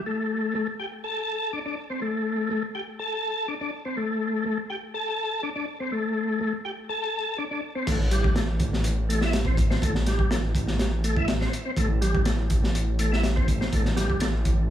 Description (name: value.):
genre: breakbeat, breaks.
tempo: 123 BPM.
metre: 4/4.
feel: straight.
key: A minor pentatonic.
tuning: A4 = 439 Hz.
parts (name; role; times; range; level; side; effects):
tonewheel organ; riff; 0.1-14.3 s; G3 to A4; -28 LUFS; left 1 dB; chorus vibrato, fast rotary speaker, tube saturation, tape echo.
detuned saw bass; bass; 7.9-14.7 s; A1; -25 LUFS; equal; none.
crunchy breakbeat drum kit; drums; 7.9-14.6 s; crash cymbal, hi-hat, kick drum, snare drum; -25 LUFS; equal; none.
room: small room ambience.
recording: studio reverb.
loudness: -24 LUFS.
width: side -11 dB against mid.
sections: 0.0-7.9 A section; 7.9-14.7 B section.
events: drop 7.9-14.7.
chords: 0.0 N.C.; 7.9 Am.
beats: | 0.06 0.55 1.04 1.53 | 2.02 2.50 2.99 3.48 | 3.97 4.45 4.94 5.43 | 5.92 6.41 6.89 7.38 | 7.87 8.36 8.84 9.33 | 9.82 10.31 10.79 11.28 | 11.77 12.26 12.75 13.23 | 13.72 14.21 14.70.